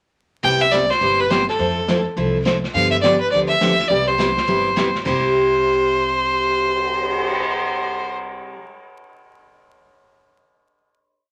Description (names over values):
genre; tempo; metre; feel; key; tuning
country, western swing; 208 BPM; 4/4; swing 63% on 8ths; C major; A4 = 440 Hz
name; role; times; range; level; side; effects
clear fiddle; melody; 0.4-8.1 s; A4 to G5; -21 LUFS; equal; none
picked steel-string acoustic guitar; accompaniment; 0.4-8.6 s; C3 to A4; -23 LUFS; equal; none
upright bass; bass; 0.4-8.4 s; G1 to G2; -32 LUFS; equal; none
vintage brush drum kit; drums; 0.4-7.3 s; brushed snare drum, crash cymbal, cymbal swell, hi-hat, kick drum, snare drum; -30 LUFS; equal; none
room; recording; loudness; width
wet club reverb, RT60 0.5 s; vinyl crackle; -19 LUFS; mono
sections
0.4-5.1 A section; 5.1-7.4 final chord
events
none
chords
0.4 Cmaj7; 1.6 Fmaj7; 2.7 G7; 3.9 Cmaj7; 5.1 C